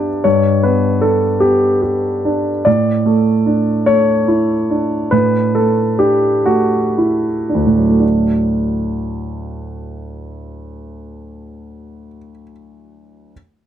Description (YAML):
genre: neoclassical minimalist piano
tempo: 37-52 BPM (dotted quarters)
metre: 6/8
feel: rubato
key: D major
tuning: A4 = 443 Hz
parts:
  - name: warm grand piano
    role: solo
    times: 0.0-13.3 s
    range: D2 to D5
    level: -14 LUFS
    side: equal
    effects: none
room: light reverb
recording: none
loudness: -12 LUFS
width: side -10 dB against mid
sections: 0.0-8.0 A section; 8.0-11.1 B section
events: slowing down 1.4-8.0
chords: 0.0 G; 2.7 Asus4; 8.0 D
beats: | 0.25 1.41 | 2.66 3.87 | 5.12 6.47 | 8.02 9.53